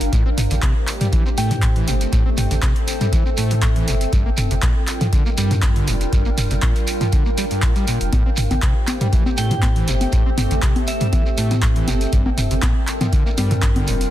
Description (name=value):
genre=acid house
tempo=120 BPM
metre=4/4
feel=swing 53% on 16ths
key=A phrygian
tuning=A4 = 440 Hz
part: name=warbly tape-like pad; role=sustained chords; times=0.0-14.1 s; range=G3 to C5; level=-28 LUFS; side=equal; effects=chorus, built-in reverb, phaser, sidechain pumping
part: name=warm sub bass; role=bass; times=0.0-14.1 s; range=F1 to A2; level=-22 LUFS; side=equal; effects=sidechain pumping
part: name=punchy analog drum machine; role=drums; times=0.0-14.1 s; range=congas, handclaps, hi-hat, toms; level=-23 LUFS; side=equal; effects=overdrive
part: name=shekere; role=percussion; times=0.0-14.1 s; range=none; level=-31 LUFS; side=right 3 dB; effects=none
part: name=granular cloud pad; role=texture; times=0.0-14.1 s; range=C4 to G5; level=-28 LUFS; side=equal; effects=built-in reverb, sidechain pumping
part: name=overdriven acid bass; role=riff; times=0.1-13.9 s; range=G2 to C4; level=-26 LUFS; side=equal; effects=distortion, analog chorus, digital delay
part: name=electronic kick drum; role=drums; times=0.1-13.7 s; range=none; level=-18 LUFS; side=equal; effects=none
part: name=soft synth bell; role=melody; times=1.4-1.8, 9.4-11.4 s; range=E5 to G5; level=-31 LUFS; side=left 1 dB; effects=chorus, phaser, vintage 12-bit sampler grit, tape echo
room=little or no reverb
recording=dense, heavily limited modern master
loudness=-16 LUFS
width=side -13 dB against mid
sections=0.0-14.1 A section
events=none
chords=0.1 Am7; 4.1 Gm7; 8.1 Am7; 12.1 Gm7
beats=| 0.13 0.63 1.13 1.63 | 2.13 2.63 3.13 3.63 | 4.13 4.63 5.13 5.63 | 6.13 6.63 7.13 7.63 | 8.13 8.63 9.13 9.63 | 10.13 10.63 11.13 11.63 | 12.13 12.63 13.13 13.63